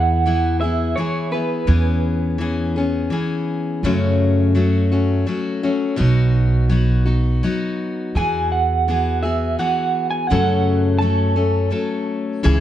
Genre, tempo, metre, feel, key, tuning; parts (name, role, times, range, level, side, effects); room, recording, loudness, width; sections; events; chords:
acoustic folk duo or small band; 84 BPM; 3/4; straight; A4 = 441 Hz
electric guitar through a small old amp; melody; 0.0-2.4, 8.2-12.0 s; B4 to A5; -22 LUFS; right 5 dB; tremolo
picked steel-string acoustic guitar; accompaniment; 0.0-12.6 s; F#2 to A4; -20 LUFS; left 3 dB
upright bass; bass; 0.0-12.6 s; B1 to F#2; -18 LUFS; right 1 dB
light reverb; dark, warm production; -17 LUFS; side -12 dB against mid
0.0-12.6 A section
0.0 E; 1.7 C#m7/E; 3.8 F#m; 6.0 B; 8.2 Eadd9; 10.3 F#m